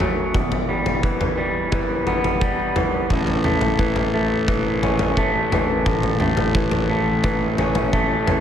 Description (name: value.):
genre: post-rock.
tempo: 87 BPM.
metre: 4/4.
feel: straight.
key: A mixolydian.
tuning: A4 = 440 Hz.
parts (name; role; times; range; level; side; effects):
electric guitar through a small old amp; arpeggios; 0.0-8.4 s; E2 to C#4; -21 LUFS; equal; slapback echo.
oversized low-tuned drum kit; drums; 0.0-8.4 s; kick drum, toms; -22 LUFS; equal; none.
fuzz picked electric bass; bass; 3.1-8.4 s; A1; -24 LUFS; equal; overdrive.
room: moderate lush hall reverb, RT60 2.5 s.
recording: big arena sound.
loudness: -18 LUFS.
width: side -9 dB against mid.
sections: 0.0-8.4 A section.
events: none.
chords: 0.3 Em; 3.1 A.